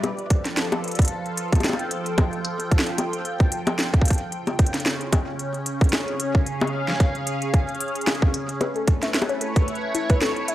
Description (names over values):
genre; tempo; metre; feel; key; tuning
IDM; 112 BPM; 4/4; swing 56% on 16ths; unclear; A4 = 439 Hz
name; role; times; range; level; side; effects
phased analog pad; sustained chords; 0.0-10.5 s; Db3 to G5; -27 LUFS; equal; phaser, chorus
organic electronic drum kit; drums; 0.0-10.5 s; bongos, hi-hat, snare drum; -25 LUFS; left 1 dB; overdrive
electronic kick drum; drums; 0.3-10.2 s; none; -19 LUFS; equal; overdrive
warbly dusty pluck; arpeggios; 8.6-10.5 s; E4 to E5; -29 LUFS; left 4 dB; chorus, analog delay
room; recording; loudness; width
digital ambience; dry, gritty hardware recording; -20 LUFS; side -14 dB against mid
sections
0.0-10.5 A section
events
none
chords
0.0 Fadd9; 4.3 Db; 8.6 Aadd9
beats
| 0.04 0.57 1.11 1.64 | 2.18 2.71 3.25 3.79 | 4.32 4.86 5.39 5.93 | 6.46 7.00 7.54 8.07 | 8.61 9.14 9.68 10.21